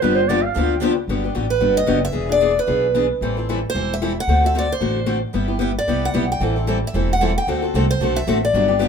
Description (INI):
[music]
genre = acoustic string swing (jazz manouche)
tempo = 226 BPM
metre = 4/4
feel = swing 55% on 8ths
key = G major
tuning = A4 = 441 Hz
[part]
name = growling clarinet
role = second line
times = 0.0-0.8 s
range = B4 to F5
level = -21 LUFS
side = right 9 dB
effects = none
[part]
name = picked steel-string acoustic guitar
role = accompaniment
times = 0.0-8.9 s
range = D3 to A4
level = -22 LUFS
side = left 5 dB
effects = none
[part]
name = picked steel-string acoustic guitar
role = accompaniment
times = 0.0-0.9, 5.3-8.9 s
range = D3 to A4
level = -27 LUFS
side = right 6 dB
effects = none
[part]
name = upright bass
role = bass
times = 0.0-8.9 s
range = E1 to D2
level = -23 LUFS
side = equal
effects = none
[part]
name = picked steel-string acoustic guitar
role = melody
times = 1.5-8.9 s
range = B4 to G5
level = -20 LUFS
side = right 1 dB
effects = none
[sound]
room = light reverb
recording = minimal, uncompressed stereo recording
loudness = -17 LUFS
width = side -6 dB against mid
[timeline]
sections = 0.0-1.1 A section; 1.1-8.9 B section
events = clarinet solo 0.0-1.1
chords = 0.0 G7; 1.1 Gmaj7; 2.2 E7; 3.2 Am7; 4.3 D7; 5.3 G6; 6.4 Am7; 7.5 D7